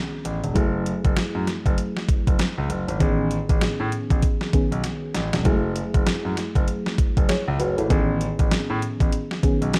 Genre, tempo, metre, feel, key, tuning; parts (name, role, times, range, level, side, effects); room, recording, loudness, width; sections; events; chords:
R&B, new jack swing; 98 BPM; 4/4; swing 60% on 16ths; F# dorian; A4 = 440 Hz
FM electric piano with tremolo; accompaniment; 0.0-9.8 s; D#3 to C#5; -29 LUFS; equal
warm concert grand piano; bass; 0.2-9.7 s; E1 to A2; -29 LUFS; equal
clean 12-bit digital drum machine; drums; 0.3-9.8 s; hi-hat, kick drum, snare drum; -24 LUFS; equal; overdrive
little or no reverb; dark, warm production; -23 LUFS; mono
0.0-9.8 A section
drum fill 4.8-5.5
0.0 Amaj9#11; 0.6 F#m9; 3.0 Amaj9#11; 5.5 F#m9; 7.9 Amaj9#11